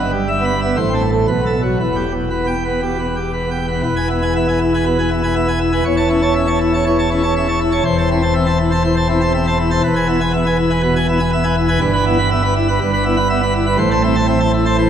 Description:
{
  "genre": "classical, organ toccata",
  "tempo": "121 BPM",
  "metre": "4/4",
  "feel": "straight",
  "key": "E minor, E major from 3.9 s, E minor from 11.8 s",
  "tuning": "A4 = 441 Hz",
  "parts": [
    { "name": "pipe organ, plenum", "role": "solo", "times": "0.0-14.9 s", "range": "E1 to B5", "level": "-14 LUFS", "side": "equal", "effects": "none" }
  ],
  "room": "wet church reverb, RT60 2.7 s",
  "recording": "none",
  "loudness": "-14 LUFS",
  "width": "side -9 dB against mid",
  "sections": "0.0-3.9 A section; 3.9-14.9 B section",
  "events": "none",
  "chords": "0.0 Em/G; 0.8 Am; 1.3 B5; 1.8 Em; 3.9 E; 5.9 A/E; 7.9 Am/E; 9.8 E; 11.8 Em/G; 13.8 Am"
}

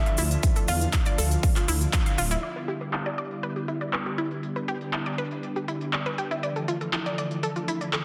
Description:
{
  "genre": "progressive house",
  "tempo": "120 BPM",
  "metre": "4/4",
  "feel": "straight",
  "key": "G mixolydian",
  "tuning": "A4 = 440 Hz",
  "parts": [
    { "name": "dark concert grand piano", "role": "melody", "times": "0.0-2.3 s", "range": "E5 to F5", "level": "-39 LUFS", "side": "equal", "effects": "dub echo" },
    { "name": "warm analog pad", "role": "sustained chords", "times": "0.0-8.0 s", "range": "D3 to A4", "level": "-35 LUFS", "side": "equal", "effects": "subtle chorus, sidechain pumping" },
    { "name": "analog pluck", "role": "arpeggios", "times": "0.1-8.0 s", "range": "E4 to F5", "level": "-33 LUFS", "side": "equal", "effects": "chorus, sidechain pumping, dub echo" },
    { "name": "big-room dance drum kit", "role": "drums", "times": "0.1-8.0 s", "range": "handclaps, hi-hat", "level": "-34 LUFS", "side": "equal", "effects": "sidechain pumping on hats, low-pass filter on hats, low-pass filter on snare, low-pass filter on room" },
    { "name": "dark detuned saw bass", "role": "bass", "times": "0.2-2.4 s", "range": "D1 to E2", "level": "-27 LUFS", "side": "equal", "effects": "sidechain pumping" },
    { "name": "cabasa", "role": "percussion", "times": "0.2-2.4 s", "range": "none", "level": "-39 LUFS", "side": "equal", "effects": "none" },
    { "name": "electronic kick drum", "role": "drums", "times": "0.4-2.0 s", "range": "none", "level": "-26 LUFS", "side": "equal", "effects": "none" }
  ],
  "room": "moderate lush hall reverb, RT60 1.7 s",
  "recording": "dense, heavily limited modern master",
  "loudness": "-27 LUFS",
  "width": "mono",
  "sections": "0.0-2.4 A section; 2.4-8.0 B section",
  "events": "band accent 1.9; filter sweep on drum 2.4-8.0",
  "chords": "0.0 Dmadd9; 2.4 G6; 6.4 Dmadd9"
}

